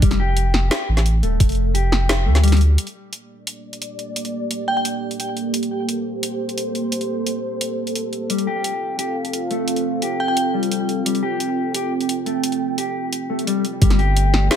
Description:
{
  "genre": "half-time drum and bass",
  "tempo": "174 BPM",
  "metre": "4/4",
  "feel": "half-time",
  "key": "G minor",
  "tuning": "A4 = 440 Hz",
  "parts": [
    { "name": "mellow electric guitar", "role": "arpeggios", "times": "0.0-2.6, 8.3-14.6 s", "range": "G3 to G4", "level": "-24 LUFS", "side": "left 3 dB", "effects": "tape echo" },
    { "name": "saturated sub bass", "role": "bass", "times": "0.0-2.8, 13.8-14.5 s", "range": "Eb1 to D2", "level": "-16 LUFS", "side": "equal", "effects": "none" },
    { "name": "drum and bass drum kit", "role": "drums", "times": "0.0-14.6 s", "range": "hi-hat, snare drum", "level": "-24 LUFS", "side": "equal", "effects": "overdrive" },
    { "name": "electronic kick drum", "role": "drums", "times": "0.0-1.5, 13.8-13.9 s", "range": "none", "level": "-15 LUFS", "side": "equal", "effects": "overdrive" },
    { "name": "dark analog pad", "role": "sustained chords", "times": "3.6-14.6 s", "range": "A3 to G5", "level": "-24 LUFS", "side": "right 2 dB", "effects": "chorus, sidechain pumping" },
    { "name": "glassy synth bell", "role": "melody", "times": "4.7-4.8, 10.2-10.3 s", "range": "G5", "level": "-25 LUFS", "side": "equal", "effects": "chorus, tremolo, tape echo" }
  ],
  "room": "light reverb, digital ambience",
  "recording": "none",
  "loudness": "-18 LUFS",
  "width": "side -9 dB against mid",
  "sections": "0.0-2.8 A section; 2.8-13.8 B section",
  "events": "filter sweep on clean electric guitar 0.0-2.8",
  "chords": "0.0 F; 2.8 Gmadd9; 8.3 F; 13.8 Gsus2"
}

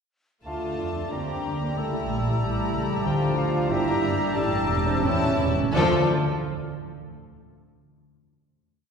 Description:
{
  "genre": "quick classical-period movement for symphony orchestra",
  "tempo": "83-94 BPM",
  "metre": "2/4",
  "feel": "straight",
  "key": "D minor",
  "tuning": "A4 = 441 Hz",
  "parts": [
    { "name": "warm studio violin section", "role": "melody", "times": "0.5-6.1 s", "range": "A4 to Bb5", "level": "-33 LUFS", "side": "left 4 dB", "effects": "none" },
    { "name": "clear studio violin section", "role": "second line", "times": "0.5-6.1 s", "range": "D4 to G4", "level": "-35 LUFS", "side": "left 2 dB", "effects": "none" },
    { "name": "dark clarinet", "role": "second line", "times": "0.5-6.0 s", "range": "E4 to G5", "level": "-35 LUFS", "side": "left 1 dB", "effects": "none" },
    { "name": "mellow hollow concert flute", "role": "second line", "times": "0.5-6.1 s", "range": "D6 to E6", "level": "-36 LUFS", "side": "left 3 dB", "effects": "none" },
    { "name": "warm oboe", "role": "second line", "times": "0.5-6.1 s", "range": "A5 to Bb5", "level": "-36 LUFS", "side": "left 2 dB", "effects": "none" },
    { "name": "warm bassoon", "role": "accompaniment", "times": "0.5-6.0 s", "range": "F3 to A3", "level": "-34 LUFS", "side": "right 1 dB", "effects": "none" },
    { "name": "warm studio viola section", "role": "accompaniment", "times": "0.5-6.1 s", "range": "E3 to A3", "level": "-33 LUFS", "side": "equal", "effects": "none" },
    { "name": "warm French horn section", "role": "sustained chords", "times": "0.5-6.0 s", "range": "A3 to F4", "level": "-33 LUFS", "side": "left 2 dB", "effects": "none" },
    { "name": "dark trumpet section", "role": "stabs", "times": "0.5-6.0 s", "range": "F4 to A4", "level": "-35 LUFS", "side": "right 1 dB", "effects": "none" },
    { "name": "dark studio cello section", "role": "bass", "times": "0.5-6.1 s", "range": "D3 to G4", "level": "-30 LUFS", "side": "right 3 dB", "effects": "none" },
    { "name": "dark studio double bass section", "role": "bass", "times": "0.5-6.1 s", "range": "E1 to D3", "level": "-29 LUFS", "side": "right 1 dB", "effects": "none" },
    { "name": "timpani", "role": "percussion", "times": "3.1-6.1 s", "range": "A2 to D3", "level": "-30 LUFS", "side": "left 1 dB", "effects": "none" }
  ],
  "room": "wet concert hall reverb, RT60 2.2 s",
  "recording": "heard from further back in the room",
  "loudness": "-22 LUFS",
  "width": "side -6 dB against mid",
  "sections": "0.5-5.7 A section; 5.7-7.1 final chord",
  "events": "slowing down 2.4-5.7; timpani fill 5.0-5.7",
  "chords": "0.5 Dm; 1.1 Gm/D; 1.8 A7; 3.1 Dm; 3.7 Gm; 4.4 A7sus4; 5.0 A7; 5.7 Dm"
}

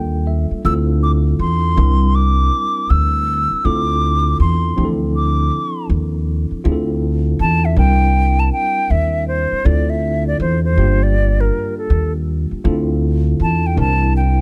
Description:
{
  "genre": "hip hop",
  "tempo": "80 BPM",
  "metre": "4/4",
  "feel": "swing 63% on 16ths",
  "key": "D minor",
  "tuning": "A4 = 440 Hz",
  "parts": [
    { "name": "tine electric piano", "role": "accompaniment", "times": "0.0-14.4 s", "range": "F3 to G5", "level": "-26 LUFS", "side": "equal", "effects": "overdrive" },
    { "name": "upright bass", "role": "bass", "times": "0.0-14.4 s", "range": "G1 to E2", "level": "-18 LUFS", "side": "equal", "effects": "none" },
    { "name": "hollow concert flute", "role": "melody", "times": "0.7-14.4 s", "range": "A4 to E6", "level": "-22 LUFS", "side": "equal", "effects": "none" }
  ],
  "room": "studio reverb",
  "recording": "none",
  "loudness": "-17 LUFS",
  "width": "mono",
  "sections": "0.0-6.7 A section; 6.7-14.4 B section",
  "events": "tine electric piano fill 0.0-0.7; flute solo 6.7-14.4",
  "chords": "0.0 Gm9; 0.7 Dm9; 1.8 C9; 3.6 Dm9; 7.8 C9; 9.7 Dm9; 10.8 Gm7; 12.7 Dm9; 13.8 C9"
}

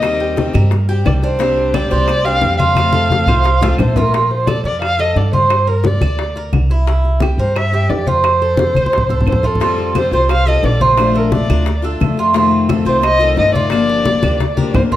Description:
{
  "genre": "latin, Cuban son and guajira",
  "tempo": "175 BPM",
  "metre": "4/4",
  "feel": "straight",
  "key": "Bb major",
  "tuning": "A4 = 440 Hz",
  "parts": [
    { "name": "dark violin", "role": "melody", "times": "0.0-15.0 s", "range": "A4 to F5", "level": "-17 LUFS", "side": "left 1 dB", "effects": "none" },
    { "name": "picked steel-string acoustic guitar", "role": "accompaniment", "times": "0.0-4.1, 9.6-15.0 s", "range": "C3 to G4", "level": "-20 LUFS", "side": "left 5 dB", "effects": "none" },
    { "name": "Cuban tres", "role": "arpeggios", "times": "0.0-15.0 s", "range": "D4 to D5", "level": "-19 LUFS", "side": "right 4 dB", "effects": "none" },
    { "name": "upright bass", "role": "bass", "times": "0.0-15.0 s", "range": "G1 to G2", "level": "-17 LUFS", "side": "right 1 dB", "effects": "none" },
    { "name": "bongos", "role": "percussion", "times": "0.0-15.0 s", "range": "none", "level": "-25 LUFS", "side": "left 6 dB", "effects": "none" },
    { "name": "claves", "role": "percussion", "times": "0.0-14.9 s", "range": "none", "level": "-31 LUFS", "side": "right 6 dB", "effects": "none" },
    { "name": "congas", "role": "percussion", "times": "0.0-15.0 s", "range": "none", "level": "-19 LUFS", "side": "left 1 dB", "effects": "none" }
  ],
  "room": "moderate large studio reverb, RT60 0.9 s",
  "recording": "none",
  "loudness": "-12 LUFS",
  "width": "side -13 dB against mid",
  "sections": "0.0-4.1 A section; 4.1-15.0 A section",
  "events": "drum fill 2.8-4.1, 8.8-9.6, 14.4-15.0",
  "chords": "0.0 Eb6; 1.4 Csus2; 2.8 F; 4.1 Bb5; 5.5 Gm; 6.9 C7; 8.2 F; 9.6 Fadd9; 11.0 Bbmaj7; 12.3 F7; 13.7 Gm7"
}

